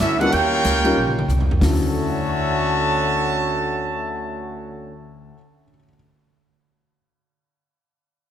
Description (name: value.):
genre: jazz, big band swing.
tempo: 186 BPM.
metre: 4/4.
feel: swing 63% on 8ths.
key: D major.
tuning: A4 = 440 Hz.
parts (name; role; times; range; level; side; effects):
clear trumpet section; melody; 0.0-5.0 s; C#4 to A5; -22 LUFS; right 1 dB; none.
bright trombone section; second line; 0.0-5.0 s; D3 to G4; -26 LUFS; right 2 dB; none.
upright bass; bass; 0.0-5.3 s; Bb1 to Eb2; -25 LUFS; equal; none.
swinging big-band drum kit; drums; 0.0-1.7 s; hi-hat, kick drum, ride cymbal, snare drum, toms; -25 LUFS; right 1 dB; none.
warm concert grand piano; accompaniment; 0.2-5.9 s; D2 to A6; -26 LUFS; left 3 dB; none.
room: moderate concert hall reverb, RT60 2.4 s.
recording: none.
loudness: -18 LUFS.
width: side -9 dB against mid.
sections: 0.0-1.6 A section; 1.6-4.2 B section.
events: drum fill 1.0-1.6.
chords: 0.3 Eb9; 1.6 Dmaj9.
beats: 0.00 | 0.32 0.64 0.97 1.29 | 1.61 1.93 2.25 2.58 | 2.90 3.22 3.55 3.87.